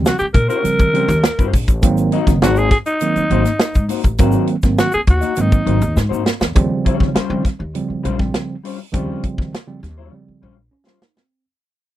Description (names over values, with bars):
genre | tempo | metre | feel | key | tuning
funk | 101 BPM | 4/4 | straight | Eb mixolydian | A4 = 441 Hz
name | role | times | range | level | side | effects
mellow electric guitar | accompaniment | 0.0-11.2 s | G3 to Eb5 | -24 LUFS | left 10 dB | none
mellow tine electric piano | stabs | 0.0-11.4 s | Db3 to F4 | -20 LUFS | right 4 dB | none
upright bass | bass | 0.0-10.7 s | Gb1 to Eb3 | -19 LUFS | equal | none
growling alto saxophone | melody | 0.1-6.0 s | Eb4 to Bb4 | -19 LUFS | equal | none
tight funk drum kit | drums | 0.1-11.3 s | hi-hat, kick drum, snare drum | -16 LUFS | equal | none
egg shaker | percussion | 0.1-6.6 s | none | -39 LUFS | left 5 dB | none
room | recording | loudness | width
little or no reverb | none | -14 LUFS | side -13 dB against mid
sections
0.0-6.6 A section; 6.6-11.3 B section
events
drum fill 6.0-6.6, 10.1-11.3; fade-out 6.6-11.3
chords
0.0 Eb13; 1.8 Ab9; 6.6 Eb13